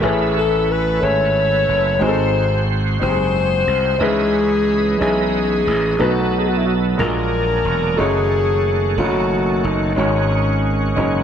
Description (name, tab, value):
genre	slow gospel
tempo	60 BPM (dotted quarters)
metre	6/8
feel	straight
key	C# minor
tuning	A4 = 440 Hz
part	mellow alto saxophone	melody	0.0-11.2 s	C#4 to C#5	-20 LUFS	left 4 dB	none
part	clear concert grand piano	accompaniment	0.0-11.2 s	G#2 to G#5	-22 LUFS	left 1 dB	none
part	bright tonewheel organ	sustained chords	0.0-11.2 s	D#3 to D#5	-24 LUFS	right 4 dB	slow rotary speaker, overdrive, chorus vibrato
part	gritty slap bass	bass	0.0-11.2 s	E1 to C#2	-20 LUFS	right 1 dB	overdrive
room	light reverb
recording	none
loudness	-15 LUFS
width	side -8 dB against mid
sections	0.0-11.2 A section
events	grand piano fill 11.0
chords	0.0 Amaj9; 2.0 G#7b9; 4.0 C#m9; 6.0 B7; 7.0 A#7b13; 8.0 D#m7b5/F#; 10.0 G#7sus4